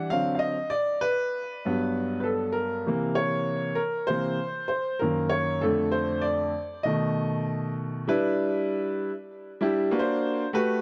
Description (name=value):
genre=hip hop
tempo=98 BPM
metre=4/4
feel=swing 59% on 16ths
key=unclear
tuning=A4 = 440 Hz
part: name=clear upright piano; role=solo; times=0.0-10.8 s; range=F2 to F5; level=-27 LUFS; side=equal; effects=tape echo
room=moderate studio reverb, RT60 0.5 s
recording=dark, warm production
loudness=-27 LUFS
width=mono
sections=0.0-8.1 A section; 8.1-10.8 A section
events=upright piano solo 0.0-8.1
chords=0.1 D7b9; 0.7 Gmaj7; 2.9 C7b9; 5.0 F#6; 5.6 F6; 6.9 B7; 8.1 Em7; 9.9 Daug7